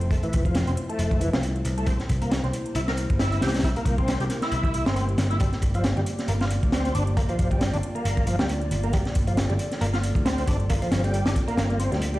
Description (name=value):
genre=breakbeat, breaks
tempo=136 BPM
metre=4/4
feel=swing 56% on 16ths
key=G dorian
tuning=A4 = 438 Hz
part: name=dark analog pad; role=sustained chords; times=0.0-12.2 s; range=A3 to D5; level=-34 LUFS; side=equal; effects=chorus, sidechain pumping
part: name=picked electric bass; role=bass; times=0.0-12.2 s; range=F1 to D2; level=-26 LUFS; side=equal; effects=none
part: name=electronic hi-hat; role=drums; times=0.0-12.2 s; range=none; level=-44 LUFS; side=right 2 dB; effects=none
part: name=overdriven tonewheel organ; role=riff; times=0.1-12.2 s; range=E3 to Bb4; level=-29 LUFS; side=equal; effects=chorus vibrato, slow rotary speaker, tape echo
part: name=crunchy breakbeat drum kit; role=drums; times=0.1-12.1 s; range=hi-hat, kick drum, snare drum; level=-26 LUFS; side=equal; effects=none
room=light reverb, small room ambience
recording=played on a big sound system in a bare room, stone room reverb, vinyl crackle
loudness=-22 LUFS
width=side -17 dB against mid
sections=0.0-12.2 A section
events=none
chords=0.0 Fmaj7; 1.9 C7; 5.4 Gm7